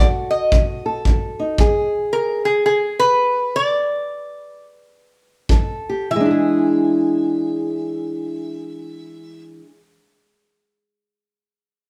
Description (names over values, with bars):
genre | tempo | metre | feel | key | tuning
acoustic country blues, solo or duo | 97-112 BPM | 4/4 | swing 62% on 8ths | E mixolydian | A4 = 440 Hz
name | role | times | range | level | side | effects
lap resonator guitar | melody | 0.0-9.4 s | G#4 to E5 | -21 LUFS | equal | none
fingerpicked old ladder-braced acoustic guitar | accompaniment | 0.0-9.8 s | B2 to A4 | -22 LUFS | equal | none
kick drum | drums | 0.5-1.7, 5.5-5.7 s | none | -19 LUFS | equal | none
room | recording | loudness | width
light reverb | band playing live in one room | -19 LUFS | mono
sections
0.0-6.1 A section; 6.1-11.1 B section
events
slowing down 1.6-6.1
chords
0.0 B7; 1.6 E7; 5.5 Fadd9; 6.1 E7